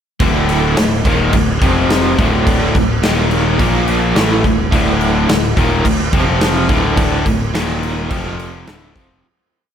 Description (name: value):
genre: hard rock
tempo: 106 BPM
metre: 4/4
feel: straight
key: D minor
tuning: A4 = 441 Hz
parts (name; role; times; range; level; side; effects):
- crunchy overdriven guitar; riff; 0.2-9.2 s; D2 to Bb3; -19 LUFS; equal; none
- overdriven electric guitar; riff; 0.2-9.2 s; D2 to Bb3; -21 LUFS; right 8 dB; tremolo
- tight distorted guitar; riff; 0.2-9.2 s; D2 to Bb3; -19 LUFS; left 7 dB; distortion
- modern bright picked electric bass; bass; 0.2-9.2 s; D1 to Bb1; -20 LUFS; equal; none
- big rock drum kit; drums; 0.2-9.1 s; crash cymbal, kick drum, snare drum; -17 LUFS; equal; none
room: light reverb, small room ambience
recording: none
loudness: -12 LUFS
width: side -8 dB against mid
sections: 0.2-9.2 riff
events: fade-out 7.0-9.2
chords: 0.2 D5; 1.6 F5; 2.2 D5; 3.0 Eb5; 3.6 Bb5; 4.2 D5; 6.1 F5; 6.7 D5; 7.6 Eb5; 8.1 F5; 8.7 Dm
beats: | 0.21 0.77 1.34 1.90 | 2.47 3.03 3.60 4.16 | 4.73 5.29 5.86 6.42 | 6.99 7.55 8.12 8.68